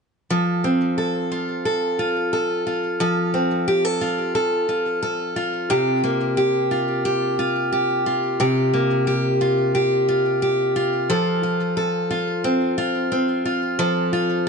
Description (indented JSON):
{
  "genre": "folktronica",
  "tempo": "89 BPM",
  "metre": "4/4",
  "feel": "straight",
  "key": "F major",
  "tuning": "A4 = 440 Hz",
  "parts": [
    { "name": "picked steel-string acoustic guitar", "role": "solo", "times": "0.3-14.5 s", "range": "C3 to A4", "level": "-19 LUFS", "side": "equal", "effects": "digital delay" }
  ],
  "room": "moderate studio reverb, RT60 0.5 s",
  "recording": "nothing above 10.4 kHz",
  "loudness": "-19 LUFS",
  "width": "side -5 dB against mid",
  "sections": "0.3-11.1 A section; 11.1-14.5 B section",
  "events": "none",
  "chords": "0.3 F; 5.7 C7sus4; 11.1 F"
}